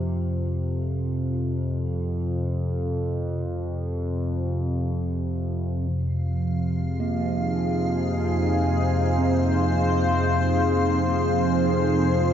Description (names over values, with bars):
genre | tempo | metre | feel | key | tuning
dark ambient drone | free time | none | none | F minor | A4 = 440 Hz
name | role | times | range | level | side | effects
bronze singing bowl | arpeggios | 0.0-12.3 s | C3 to C4 | -32 LUFS | right 2 dB | diffuse ambient delay, shimmer reverb
analog drone | drone | 0.0-12.3 s | F2 to C3 | -24 LUFS | equal | chorus
sweeping resonant pad | sustained chords | 5.9-12.3 s | F3 to C5 | -25 LUFS | equal | chorus, shimmer reverb
icy glass pad | texture | 6.5-12.3 s | F5 | -30 LUFS | left 1 dB | chorus, built-in reverb, shimmer reverb
room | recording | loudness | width
wet lush hall reverb, RT60 2.8 s | dreamy mix soaked in reverb | -22 LUFS | side -9 dB against mid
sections
0.0-5.9 A section; 5.9-12.3 B section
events
none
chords
0.0 F5; 5.9 Fm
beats
free time